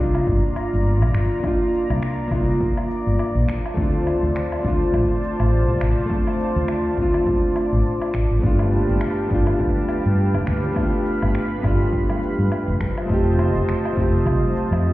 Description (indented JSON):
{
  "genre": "sunset chillout",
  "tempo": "103 BPM",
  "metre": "4/4",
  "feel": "swing 57% on 16ths",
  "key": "C dorian",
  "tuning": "A4 = 440 Hz",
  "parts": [
    { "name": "nylon-string guitar", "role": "accompaniment", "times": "0.0-14.9 s", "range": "A3 to G4", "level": "-24 LUFS", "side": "equal", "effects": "auto-pan, tape echo" },
    { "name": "lush unison pad", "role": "sustained chords", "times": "0.0-14.9 s", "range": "F4 to B5", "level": "-25 LUFS", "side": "equal", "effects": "chorus" },
    { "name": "fretless electric bass", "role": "bass", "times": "0.0-14.9 s", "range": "F1 to G2", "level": "-20 LUFS", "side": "equal", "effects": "none" },
    { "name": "electronic woodblock, shaker and finger snaps", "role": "drums", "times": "0.1-14.9 s", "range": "none", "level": "-35 LUFS", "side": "equal", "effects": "overdrive, small room ambience" },
    { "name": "electronic kick drum", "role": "drums", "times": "0.3-14.4 s", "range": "none", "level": "-25 LUFS", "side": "equal", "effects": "overdrive, small room ambience" },
    { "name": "congas", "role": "percussion", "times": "8.7-14.5 s", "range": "none", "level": "-30 LUFS", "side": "equal", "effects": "none" }
  ],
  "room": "light reverb, digital ambience",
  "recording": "heard muffled through a wall, stone room reverb, EQ",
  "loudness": "-18 LUFS",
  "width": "side -17 dB against mid",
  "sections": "0.0-14.9 A section",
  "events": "none",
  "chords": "0.0 Cm11; 3.5 Dm7; 8.4 G9; 12.8 F7"
}